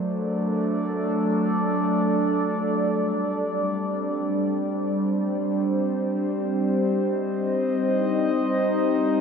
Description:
ambient; 63 BPM; 4/4; straight; A4 = 439 Hz
warbly tape-like pad; solo; 0.0-9.2 s; F#3 to Eb5; -22 LUFS; equal; chorus, built-in reverb, phaser, diffuse ambient delay
wet huge ambient reverb, RT60 8.9 s; -22 LUFS; side -6 dB against mid
0.0-9.2 A section
0.0 D; 2.8 Gsus4; 6.6 Cm

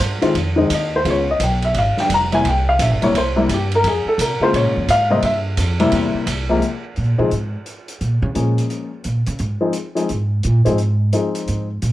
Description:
jazz piano trio; 173 BPM; 4/4; swing 64% on 8ths; F minor; A4 = 440 Hz
upright bass; bass; 0.0-11.9 s; E1 to Db3; -19 LUFS; right 1 dB
swinging big-band drum kit; drums; 0.0-11.9 s; hi-hat, kick drum, ride cymbal, snare drum; -27 LUFS; right 3 dB
dark baby grand piano; melody; 0.2-11.7 s; C3 to Bb5; -17 LUFS; left 2 dB
light reverb; worn, warbling old tape, cassette tape, warbly pitch drift; -16 LUFS; side -15 dB against mid
0.0-6.6 A section; 6.6-11.9 A section
grand piano solo 0.0-6.6; upright bass solo 6.6-11.9
0.0 Fm7; 1.1 Db7; 2.4 C7; 3.8 Fm; 4.5 Bbm7; 5.2 C7; 6.6 Fm (rootless); 8.0 Bbm7; 9.4 Fm7

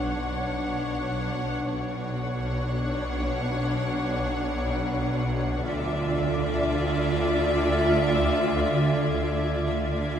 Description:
cinematic, suspense film score; 60 BPM; 4/4; straight; B minor; A4 = 440 Hz
clear symphonic violin section; melody; 0.0-10.2 s; E5 to F#5; -32 LUFS; left 2 dB
clear symphonic violin section; second line; 0.0-10.2 s; C#5 to D5; -34 LUFS; left 1 dB
clear symphonic viola section; accompaniment; 0.0-10.2 s; D4 to F4; -32 LUFS; left 1 dB
glass harmonica; sustained chords; 0.0-10.2 s; D4 to F#5; -32 LUFS; right 1 dB
bright studio cello section; bass; 0.0-10.2 s; B2 to D3; -31 LUFS; right 3 dB
clear symphonic double bass section; bass; 0.0-10.2 s; B1 to D2; -31 LUFS; equal
swarming drone; drone; 0.0-10.2 s; B1 to D2; -32 LUFS; left 1 dB; built-in reverb
impact; sound effects; 0.0-1.6 s; barely audible
Celtic harp; texture; 0.0-10.2 s; E5 to F#5; -40 LUFS; left 4 dB
rich studio violin section; texture; 5.7-10.2 s; D6 to G#6; -41 LUFS; left 4 dB
wet scoring stage reverb, RT60 2.0 s; heard from further back in the room; -24 LUFS; side -8 dB against mid
0.0-10.2 A section
impact 0.0-1.6
0.0 Bmadd9; 5.7 Dmadd9

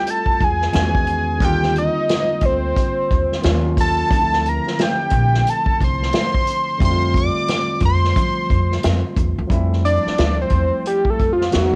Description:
R&B, neo-soul; 89 BPM; 4/4; swing 62% on 16ths; F major; A4 = 444 Hz
fat analog lead; melody; 0.0-11.8 s; F4 to D6; -22 LUFS; equal; phaser, cassette tape
barky tine electric piano; accompaniment; 0.0-11.8 s; D3 to F#4; -28 LUFS; equal; overdrive
unplugged drum kit; drums; 0.1-11.7 s; hi-hat, kick drum, snare drum; -23 LUFS; equal; cassette tape
upright bass; bass; 0.4-11.7 s; Bb1 to F3; -23 LUFS; equal; tube saturation
light reverb; home recording on cassette; -18 LUFS; mono
0.0-9.5 A section; 9.5-11.8 B section
analog synth lead solo 9.5-11.8
0.0 Fmaj9; 0.7 Emaj13; 1.4 Ebmaj13; 3.4 Ebm9; 4.1 Dm9; 6.8 Fmaj9

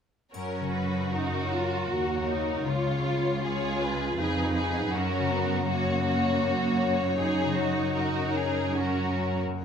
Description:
classical, slow romantic movement for symphony orchestra; 68-82 BPM; 3/4; rubato; F# major; A4 = 440 Hz
rich studio violin section; melody; 0.3-9.6 s; A#4 to C#5; -34 LUFS; left 5 dB
rich symphonic violin section; second line; 0.3-9.4 s; E#4 to G#4; -32 LUFS; left 2 dB
rich studio viola section; accompaniment; 0.3-9.4 s; A#3 to F#4; -31 LUFS; right 2 dB
concert harp; arpeggios; 0.3-9.6 s; F#2 to F#5; -32 LUFS; left 9 dB
rich studio cello section; bass; 0.3-9.4 s; C#2 to F#2; -30 LUFS; right 4 dB
triangle; percussion; 0.3-1.9 s; -56 LUFS; left 3 dB
moderate recital hall reverb, RT60 1.4 s; close, detailed microphones; -25 LUFS; side -7 dB against mid
0.3-9.6 A section
0.3 F#; 2.7 C#9; 4.9 F#

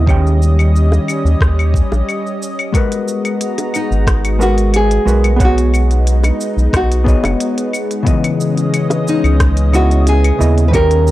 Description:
sunset chillout; 90 BPM; 4/4; straight; A4 = 440 Hz
hollow-body jazz guitar; accompaniment; 0.0-11.1 s; C#3 to G5; -19 LUFS; moving between left 5 dB and right 4 dB; auto-pan, tape echo
lush unison pad; sustained chords; 0.0-11.1 s; C#3 to A#5; -21 LUFS; equal; chorus
round analog bass; bass; 0.0-11.1 s; F#1 to D#2; -12 LUFS; equal
electronic kick drum; drums; 0.1-10.9 s; -15 LUFS; equal
smooth R&B drum kit; drums; 0.1-11.1 s; cabasa, claves, hi-hat, rim click; -23 LUFS; left 2 dB
bongos; percussion; 0.9-9.9 s; -22 LUFS; equal
nylon-string guitar; melody; 3.8-11.1 s; D#4 to B4; -18 LUFS; equal; analog delay
digital ambience; dry, gritty hardware recording, cassette tape; -11 LUFS; side -15 dB against mid
0.0-11.1 A section
0.1 D#7; 2.7 G#m9; 5.4 B69; 8.1 C#m9

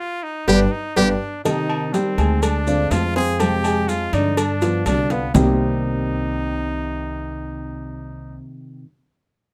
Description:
latin, Cuban son and guajira; 123 BPM; 4/4; straight; C minor; A4 = 438 Hz
bright trumpet; second line; 0.0-8.4 s; B3 to Ab4; -29 LUFS; equal
trumpet with metal mute; melody; 0.5-1.1 s; G4; -23 LUFS; equal
nylon-string guitar; accompaniment; 0.5-8.9 s; C3 to G4; -27 LUFS; equal
dark grand piano; arpeggios; 0.5-8.4 s; C3 to C6; -25 LUFS; equal
upright bass; bass; 0.5-8.4 s; G1 to G2; -27 LUFS; equal
cowbell and bongos; percussion; 0.5-5.5 s; -26 LUFS; equal
maracas; percussion; 0.5-5.5 s; -39 LUFS; equal
timbales and agogo bells; percussion; 0.5-5.5 s; -32 LUFS; equal
light reverb; close, detailed microphones; -20 LUFS; mono
0.0-1.5 A section; 1.5-5.3 B section; 5.3-9.2 C section
band accent 0.0-1.5; drum fill 0.7-1.5
0.5 G; 1.5 Cm7; 2.4 Dm7b5; 3.4 Fm; 4.4 G7; 5.3 Cm7

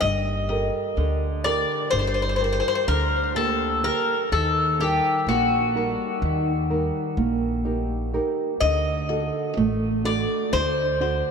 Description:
greek folk; 126 BPM (eighths); 9/8; straight; A4 = 440 Hz
Greek bouzouki; melody; 0.0-11.3 s; F#4 to Eb5; -24 LUFS; left 3 dB; ping-pong delay
nylon-string guitar; accompaniment; 0.0-11.3 s; D3 to Bb4; -26 LUFS; right 2 dB
upright bass; bass; 0.0-11.2 s; G1 to Eb2; -27 LUFS; equal
wet cathedral reverb, RT60 6.7 s; dreamy mix soaked in reverb; -21 LUFS; side -6 dB against mid
0.0-11.3 A section
0.0 Gmadd9; 4.3 Eb; 8.6 D

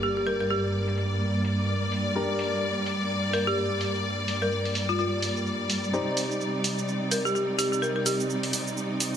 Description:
bass house; 127 BPM; 4/4; swing 58% on 16ths; G minor; A4 = 440 Hz
folk marimba with hard mallets; melody; 0.0-8.5 s; F4 to Bb4; -28 LUFS; equal; tape echo
rich studio string section; sustained chords; 0.0-9.2 s; G2 to D5; -27 LUFS; equal
warm grand piano; stabs; 0.0-9.2 s; D4 to D5; -32 LUFS; left 2 dB; low-pass filter, tape echo
electronic hi-hat and shaker; drums; 0.0-9.2 s; -31 LUFS; right 2 dB; low-pass filter on snare, low-pass filter on cymbals, low-pass filter on perc, low-pass filter on hats, low-pass filter on room
moderate lush hall reverb, RT60 2.6 s; -24 LUFS; side -9 dB against mid
0.0-9.2 A section
filter sweep on grand piano 0.0-9.2
0.0 Gm; 5.9 Cmadd9

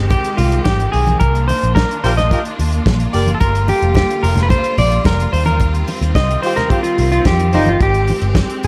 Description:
disco; 109 BPM; 4/4; straight; C minor; A4 = 437 Hz
bright studio string section; sustained chords; 0.0-8.7 s; D3 to G4; -26 LUFS; equal
picked electric bass with an envelope filter; bass; 0.0-8.7 s; F1 to F2; -18 LUFS; equal
semi-hollow electric guitar; accompaniment; 0.1-8.7 s; Eb4 to Eb5; -20 LUFS; equal; spring reverb
warm soul drum kit; drums; 0.1-8.7 s; hi-hat, kick drum, snare drum; -21 LUFS; equal
congas; percussion; 0.1-8.5 s; -26 LUFS; equal
mellow horn section; stabs; 2.0-7.7 s; F4 to D5; -24 LUFS; equal
light reverb; -15 LUFS; mono
0.0-8.7 A section
clean electric guitar solo 0.0-8.7
0.0 Abmaj7; 1.2 Cm11; 3.4 Gm7; 5.3 Eb69; 7.8 Abmaj7

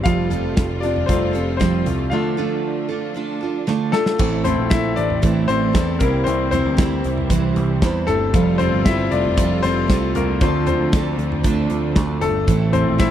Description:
piano-driven pop; 116 BPM; 4/4; straight; F major; A4 = 442 Hz
bright concert grand piano; accompaniment; 0.0-13.1 s; D3 to F5; -22 LUFS; left 7 dB
clear studio string section; sustained chords; 0.0-13.1 s; C3 to F4; -30 LUFS; right 1 dB
picked steel-string acoustic guitar; riff; 0.0-13.1 s; A2 to C5; -22 LUFS; right 6 dB
overdriven picked electric bass; bass; 0.0-13.1 s; F1 to E2; -23 LUFS; equal
modern studio drum kit; drums; 0.1-13.1 s; crash cymbal, hi-hat, kick drum, snare drum, toms; -21 LUFS; equal
little or no reverb; dry, close 1970s-style studio recording; -16 LUFS; side -10 dB against mid
0.0-4.2 A section; 4.2-13.1 B section
grand piano solo 0.0-4.2, 4.2-13.1; break 2.1-4.2; drum fill 3.7-4.2
0.1 Fadd9; 2.1 Dm; 4.2 Am; 6.0 C; 8.3 Fadd9; 10.4 Dm; 12.5 Am

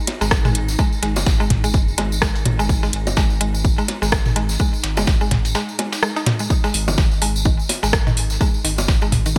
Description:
minimal techno; 126 BPM; 4/4; swing 58% on 16ths; A4 = 440 Hz
swarming drone; texture; 0.0-9.4 s; D#4; -38 LUFS; equal; built-in reverb, ensemble chorus, sidechain pumping
dusty soul sampler-style drum kit; drums; 0.1-9.4 s; hi-hat, snare drum, tambourine; -32 LUFS; equal; sidechain pumping on perc, high-pass filter on perc, high-pass filter on snare, sidechain pumping on hats, high-pass filter on hats, high-pass filter on room
house drum kit; drums; 0.1-9.2 s; hi-hat, rim click; -24 LUFS; equal
electronic bongos, cowbell and toms; percussion; 0.1-9.2 s; -26 LUFS; equal
mallet-like synth pluck; riff; 0.2-9.3 s; D#3 to D#4; -28 LUFS; equal; chorus, sidechain pumping, digital delay
round analog bass; bass; 0.2-9.4 s; F#1 to G#1; -25 LUFS; equal; sidechain pumping
tambourine; percussion; 0.2-9.4 s; -32 LUFS; equal
electronic kick drum; drums; 0.3-9.4 s; -21 LUFS; equal
light reverb; bright 1980s-style digital production; -19 LUFS; mono
0.0-9.4 A section
0.0 G#5

